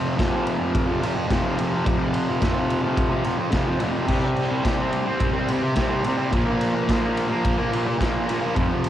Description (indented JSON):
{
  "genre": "garage rock duo or trio",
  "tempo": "108 BPM",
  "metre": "4/4",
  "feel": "straight",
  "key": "unclear",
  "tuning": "A4 = 439 Hz",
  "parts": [
    { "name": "fuzz guitar", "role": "riff", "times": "0.0-8.9 s", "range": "F2 to C4", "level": "-22 LUFS", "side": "equal", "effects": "distortion, cassette tape" },
    { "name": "raw garage drum kit", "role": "drums", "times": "0.2-8.9 s", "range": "crash cymbal, kick drum, ride cymbal, snare drum", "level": "-25 LUFS", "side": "equal", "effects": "none" }
  ],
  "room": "studio ambience",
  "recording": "home recording on cassette",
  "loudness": "-20 LUFS",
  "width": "side -11 dB against mid",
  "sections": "0.0-8.9 A section",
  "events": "none",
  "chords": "0.0 F5; 4.1 C5; 6.3 Bb5"
}